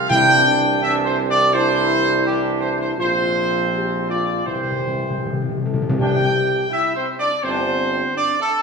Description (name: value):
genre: classical, ceremonial fanfare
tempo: 83 BPM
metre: 4/4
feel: straight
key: C mixolydian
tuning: A4 = 440 Hz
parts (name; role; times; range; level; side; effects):
- clear trumpet section; melody; 0.0-8.6 s; G4 to G5; -19 LUFS; right 1 dB; none
- clear trombone section; sustained chords; 0.0-7.7 s; E3 to D4; -27 LUFS; right 4 dB; none
- mellow tuba; bass; 0.0-8.0 s; G1 to C2; -26 LUFS; right 4 dB; none
- mellow French horn section; sustained chords; 0.1-8.5 s; A3 to A4; -25 LUFS; left 3 dB; none
- timpani; percussion; 0.1-7.0 s; C3; -24 LUFS; left 3 dB; none
room: wet recital hall reverb, RT60 1.4 s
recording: recorded in a church or concert hall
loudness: -17 LUFS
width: side -5 dB against mid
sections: 0.0-6.0 A section; 6.0-8.6 A section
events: timpani fill 4.5-6.0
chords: 0.1 Cadd9; 3.0 Bbsus2; 4.5 C; 6.0 Cadd9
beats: | 0.10 0.82 1.54 2.25 | 2.98 3.71 4.47 5.23 | 5.99 6.72 7.44 8.16